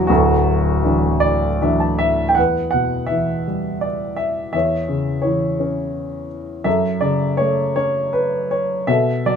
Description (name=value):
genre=classical, lyrical solo piano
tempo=76-88 BPM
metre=3/4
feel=rubato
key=unclear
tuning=A4 = 440 Hz
part: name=dark baby grand piano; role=solo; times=0.0-9.4 s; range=D1 to A5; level=-16 LUFS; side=equal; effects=none
room=light reverb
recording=minimal, uncompressed stereo recording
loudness=-17 LUFS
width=side -7 dB against mid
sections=0.0-2.4 A section; 2.4-9.4 B section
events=grand piano fill 1.2-2.4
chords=0.1 Dadd9; 2.4 Em; 4.5 C#m/E; 6.7 F#m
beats=| 0.10 0.85 1.62 | 2.38 3.11 3.84 | 4.54 5.24 5.95 | 6.66 7.40 8.15 | 8.88